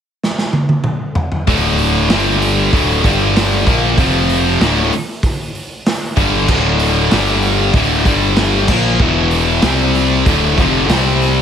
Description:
hard rock; 96 BPM; 4/4; straight; D minor; A4 = 440 Hz
raw garage drum kit; drums; 0.2-11.4 s; crash cymbal, hi-hat, kick drum, snare drum, toms; -17 LUFS; right 1 dB
distorted electric guitar; riff; 1.5-11.4 s; D2 to C4; -17 LUFS; left 12 dB; overdrive
high-gain distorted guitar; riff; 1.5-11.4 s; D2 to C4; -18 LUFS; right 11 dB; distortion
scooped high-gain guitar; riff; 1.5-11.4 s; D2 to C4; -20 LUFS; right 2 dB; distortion
fuzz picked electric bass; bass; 1.5-11.4 s; D1 to C2; -18 LUFS; right 1 dB; overdrive
light reverb; -12 LUFS; side -8 dB against mid
0.0-1.5 A section; 1.5-11.4 B section
drum fill 0.2-1.5
0.0 N.C.; 1.5 D5; 2.1 G5; 2.7 D5; 3.0 G5; 3.7 Bb5; 4.0 F5; 4.6 D5; 7.1 G5; 7.8 D5; 8.1 G5; 8.7 Bb5; 9.0 E5; 9.6 C5; 10.3 Dm; 10.9 C5

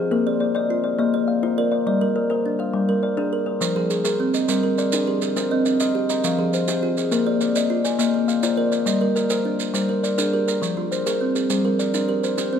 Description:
southern african traditional, mbira-style interlocking cycle; 137 BPM (dotted quarters); 12/8; straight; A4 = 441 Hz
kalimba; arpeggios; 0.0-12.6 s; F3 to F5; -21 LUFS; left 5 dB; tape echo
kalimba; arpeggios; 0.0-12.6 s; F3 to Bb5; -23 LUFS; right 6 dB
maracas; percussion; 3.6-12.5 s; -30 LUFS; right 9 dB
moderate recital hall reverb, RT60 1.2 s; dark, warm production; -19 LUFS; side -8 dB against mid
0.0-10.6 A section; 10.6-12.6 A section
0.1 Bb; 1.9 Gm; 3.6 Fm; 4.5 Gm; 5.4 Cm; 6.2 Fm; 7.1 Bb; 8.9 Gm; 10.6 Fm; 11.5 Gm

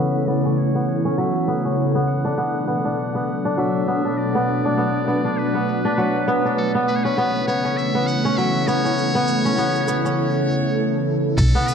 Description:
organic downtempo; 100 BPM; 4/4; swing 58% on 16ths; A4 = 440 Hz
trumpet with metal mute; melody; 0.0-11.7 s; A4 to F#5; -30 LUFS; right 1 dB; digital delay
ethereal airy pad; sustained chords; 0.0-11.7 s; B2 to B4; -22 LUFS; equal; ensemble chorus, built-in reverb, sidechain pumping
kora; arpeggios; 0.0-11.7 s; F#3 to D4; -21 LUFS; left 1 dB; low-pass filter, ping-pong delay
electronic shaker and crash cymbal; drums; 0.2-11.7 s; -38 LUFS; right 4 dB
upright bass; bass; 11.4-11.5 s; B1; -17 LUFS; equal
electronic kick drum; drums; 11.4-11.5 s; -21 LUFS; equal
moderate lush hall reverb, RT60 1.9 s, small room reverb; dark, warm production, low-pass filter; -18 LUFS; side -6 dB against mid
0.0-11.4 A section
filter sweep on kora 0.0-11.4; filter sweep on ambient pad 0.0-11.4; filter sweep 0.0-11.4
0.0 A; 1.8 Bm7; 6.6 A

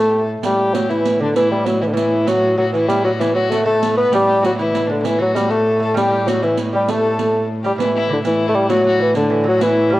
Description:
medieval dance; 131 BPM (dotted quarters); 6/8; straight; A4 = 440 Hz
mellow bassoon; melody; 0.0-10.0 s; D3 to B3; -16 LUFS; left 1 dB; cassette tape
dark fiddle; second line; 0.0-10.0 s; D4 to B4; -24 LUFS; left 4 dB; cassette tape
lute; second line; 0.0-10.0 s; D3 to B3; -25 LUFS; right 5 dB; cassette tape
warm viola da gamba; drone; 0.0-10.0 s; A2; -23 LUFS; equal; cassette tape
riq; percussion; 0.4-9.8 s; -26 LUFS; right 6 dB
moderate spring reverb, RT60 2.1 s; home recording on cassette; -14 LUFS; side -16 dB against mid
0.4-7.8 A section; 7.8-10.0 B section

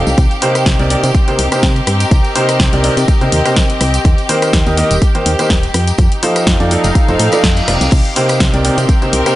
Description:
piano house; 124 BPM; 4/4; swing 55% on 16ths; C dorian; A4 = 441 Hz
clear symphonic violin section; sustained chords; 0.0-9.4 s; G4 to G5; -22 LUFS; equal; sidechain pumping
clear upright piano; riff; 0.0-9.4 s; C3 to Eb5; -16 LUFS; equal; sidechain pumping, low-pass filter, dub echo
solid FM bass; bass; 0.0-9.2 s; Eb1 to C3; -16 LUFS; equal; tube saturation, sidechain pumping
rich chamber string section; texture; 0.0-9.4 s; C4 to F5; -21 LUFS; left 1 dB; sidechain pumping
house drum kit; drums; 0.1-9.4 s; crash cymbal, hi-hat, rim click, shaker, snare drum; -18 LUFS; left 1 dB
tambourine; percussion; 0.1-9.3 s; -29 LUFS; equal
electronic kick drum; drums; 0.2-9.0 s; -12 LUFS; equal
reverse cymbal; sound effects; 7.2-7.9 s; -25 LUFS; right 1 dB
light reverb, studio reverb; nothing above 10.7 kHz; -10 LUFS; side -15 dB against mid
0.0-9.4 A section
reverse cymbal 7.2-7.9
0.2 Cm7; 4.0 Eb6; 5.7 F7; 7.9 Cm7

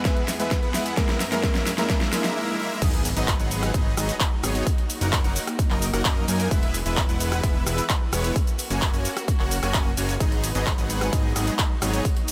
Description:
EDM, festival progressive house; 130 BPM; 4/4; straight; G# minor; A4 = 442 Hz
dark grand piano; accompaniment; 0.0-2.2 s; G#3 to E5; -33 LUFS; equal; sidechain pumping, digital delay
warm studio string section; sustained chords; 0.0-12.3 s; E2 to B4; -37 LUFS; equal; sidechain pumping
supersaw chords; riff; 0.0-12.0 s; F#3 to G#5; -31 LUFS; equal; lush chorus, sidechain pumping, digital delay
riser, swell and sub drop; sound effects; 0.7-4.7 s; -38 LUFS; equal
big-room dance drum kit; drums; 0.1-12.3 s; crash cymbal, handclaps, hi-hat, ride cymbal, rim click, shaker, snare drum; -30 LUFS; equal
electronic kick drum; drums; 0.1-12.1 s; -26 LUFS; equal
fat analog bass; bass; 2.8-12.0 s; E1 to F#2; -30 LUFS; equal; sidechain pumping
light reverb, digital ambience; -24 LUFS; mono
0.0-2.8 A section; 2.8-12.3 B section
build-up 0.0-2.8; drum fill 0.0-2.4; drop 2.8-12.3; impact 2.8-4.7
0.0 E; 1.0 F#; 2.8 G#m7; 4.7 D#m/F#; 6.5 E; 8.4 F#; 10.2 G#m7

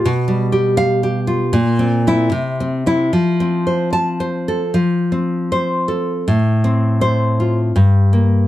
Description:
romantic piece for solo classical guitar; 71-83 BPM; 2/4; rubato; F major; A4 = 439 Hz
nylon-string guitar; solo; 0.0-8.5 s; G2 to A5; -14 LUFS; equal
light reverb; dark, warm production; -14 LUFS; side -14 dB against mid
0.0-4.8 A section; 4.8-8.5 B section
0.1 G7/B; 1.6 C7/Bb; 2.3 C; 3.1 F; 6.3 F/A; 7.7 Gm

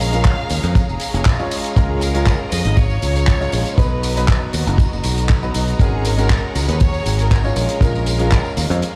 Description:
nu-disco, nu disco; 119 BPM; 4/4; straight; Db mixolydian; A4 = 440 Hz
clear chamber violin section; melody; 0.0-9.0 s; Ab4 to F5; -30 LUFS; equal; analog delay
bright baby grand piano; accompaniment; 0.0-9.0 s; Gb3 to Db5; -27 LUFS; equal; sidechain pumping, slapback echo
rich symphonic string section; sustained chords; 0.0-9.0 s; Cb4 to Bb5; -31 LUFS; equal; vintage 12-bit sampler grit, sidechain pumping
fingered electric bass; bass; 0.0-8.8 s; F1 to F2; -21 LUFS; equal; sidechain pumping
damped 70s drum kit; drums; 0.0-8.9 s; handclaps, hi-hat, ride cymbal, tambourine; -28 LUFS; equal; small room ambience
kick drum; drums; 0.3-8.4 s; -17 LUFS; equal; small room ambience
studio ambience; played on a big sound system in a bare room, stone room reverb; -17 LUFS; mono
0.0-9.0 A section
0.0 Bbm7; 1.8 Db6; 3.8 Cbmaj7; 5.8 Ab9sus4; 7.6 Bbm7

